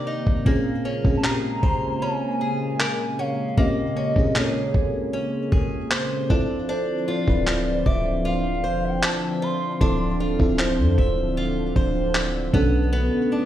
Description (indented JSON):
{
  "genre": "contemporary R&B",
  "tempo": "77 BPM",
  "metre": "4/4",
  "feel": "straight",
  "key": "unclear",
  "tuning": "A4 = 440 Hz",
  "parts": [
    { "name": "mellow FM electric piano", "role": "accompaniment", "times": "0.0-13.5 s", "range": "Bb2 to C5", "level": "-26 LUFS", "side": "right 1 dB", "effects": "chorus" },
    { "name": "warm analog pad", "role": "sustained chords", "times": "0.0-13.5 s", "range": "C3 to D4", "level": "-29 LUFS", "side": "equal", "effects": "chorus" },
    { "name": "picked swing-style acoustic guitar", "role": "arpeggios", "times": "0.0-13.5 s", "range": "Bb3 to E5", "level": "-29 LUFS", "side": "left 2 dB", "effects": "digital delay" },
    { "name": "dusty soul sampler-style drum kit", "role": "drums", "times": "0.3-12.7 s", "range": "handclaps, kick drum", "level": "-22 LUFS", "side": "equal", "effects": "none" },
    { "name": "gliding portamento lead", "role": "melody", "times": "1.2-10.2 s", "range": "C5 to C6", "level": "-28 LUFS", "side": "equal", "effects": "chorus, digital delay" },
    { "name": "warm 808-style bass", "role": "bass", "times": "7.3-13.1 s", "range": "D1 to F2", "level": "-25 LUFS", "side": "equal", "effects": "none" }
  ],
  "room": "little or no reverb",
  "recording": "played on a big sound system in a bare room, stone room reverb",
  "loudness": "-20 LUFS",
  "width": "side -12 dB against mid",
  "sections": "0.0-13.5 A section",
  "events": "none",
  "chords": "0.5 Bbm9; 6.3 Dm9; 12.5 Bm9",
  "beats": "| 0.46 1.24 2.02 2.80 | 3.58 4.36 5.13 5.91 | 6.69 7.47 8.25 9.03 | 9.81 10.59 11.37 12.15 | 12.93"
}